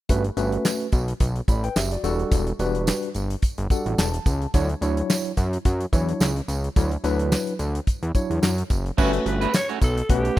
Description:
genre	early-eighties boogie funk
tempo	108 BPM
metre	4/4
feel	swing 56% on 16ths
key	unclear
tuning	A4 = 440 Hz
part	bright tine electric piano	accompaniment	0.1-10.4 s	F#3 to B5	-26 LUFS	left 1 dB	medium stereo tremolo
part	fat analog bass	bass	0.1-10.4 s	E1 to F#2	-24 LUFS	equal	none
part	damped 70s drum kit	drums	0.1-10.4 s	crash cymbal, handclaps, hi-hat, kick drum, snare drum	-22 LUFS	equal	none
part	tambourine	percussion	0.1-10.0 s	none	-36 LUFS	right 6 dB	none
part	electric guitar at the edge of break-up	riff	9.0-10.4 s	A3 to C#5	-28 LUFS	right 8 dB	wide subtle chorus
part	growling alto saxophone	melody	9.3-10.4 s	G4 to C#5	-27 LUFS	equal	none
room	small room reverb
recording	rough home demo mix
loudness	-21 LUFS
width	side -15 dB against mid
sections	0.1-9.0 A section; 9.0-10.4 B section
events	tine electric piano fill 3.4-4.5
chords	0.1 Gmaj9#11; 2.0 Em11; 4.5 Dmaj9; 9.0 Gmaj9#11

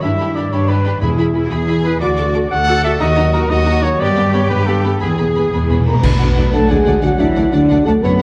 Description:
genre	cinematic, heroic adventure film score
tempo	120 BPM (dotted quarters)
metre	6/8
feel	straight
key	unclear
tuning	A4 = 440 Hz
part	rich symphonic violin section	melody	0.0-8.2 s	F#5 to D6	-33 LUFS	equal	none
part	rich symphonic violin section	second line	0.0-8.2 s	F#4 to D5	-33 LUFS	equal	none
part	rich symphonic viola section	accompaniment	0.0-8.2 s	A3 to F#4	-26 LUFS	equal	none
part	concert harp	arpeggios	0.0-8.2 s	E2 to B5	-26 LUFS	equal	none
part	mellow trumpet	stabs	0.0-8.2 s	G#4 to F#5	-23 LUFS	equal	none
part	clear symphonic double bass section	bass	0.0-8.1 s	D2 to G2	-21 LUFS	equal	none
part	rich symphonic cello section	bass	0.0-8.2 s	D3 to A4	-24 LUFS	equal	none
part	timpani	percussion	1.0-1.5, 5.0-6.0 s	E2	-22 LUFS	equal	none
part	cymbal swell, clash cymbals and concert bass drum	percussion	4.0-6.7 s	none	-22 LUFS	equal	none
part	mellow concert flute	second line	5.9-8.2 s	D5 to B5	-28 LUFS	equal	none
part	mellow French horn section	sustained chords	5.9-8.2 s	D4 to B4	-19 LUFS	equal	none
part	clear trombone section	sustained chords	6.0-8.2 s	F#3 to D4	-28 LUFS	equal	none
part	mellow tuba	bass	6.0-8.2 s	F#1 to D2	-24 LUFS	equal	none
room	wet recital hall reverb, RT60 1.5 s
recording	worn, warbling old tape, cassette tape, warbly pitch drift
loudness	-15 LUFS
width	mono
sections	0.0-6.0 A section; 6.0-8.2 B section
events	timpani fill 5.0-6.0; band accent 6.0-6.4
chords	0.0 G; 1.0 E; 2.0 D; 3.0 D#m; 4.0 G; 5.0 E; 6.0 D

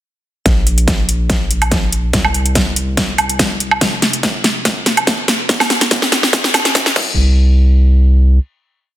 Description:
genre	future bass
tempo	143 BPM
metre	4/4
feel	half-time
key	unclear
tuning	A4 = 440 Hz
part	long sustained 808-style bass	bass	0.5-8.4 s	F1 to C2	-14 LUFS	equal	sidechain pumping
part	dubstep drum kit	drums	0.5-7.0 s	crash cymbal, hi-hat, snare drum, woodblock	-14 LUFS	equal	none
part	electronic kick drum	drums	0.5-7.0 s	none	-18 LUFS	equal	distortion
room	light reverb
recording	dense, heavily limited modern master, high-pass filter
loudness	-11 LUFS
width	side -14 dB against mid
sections	0.5-7.2 build; 7.2-9.0 final hit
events	build-up 0.5-7.2; drum fill 0.5-7.2; filter sweep 0.5-7.2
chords	none

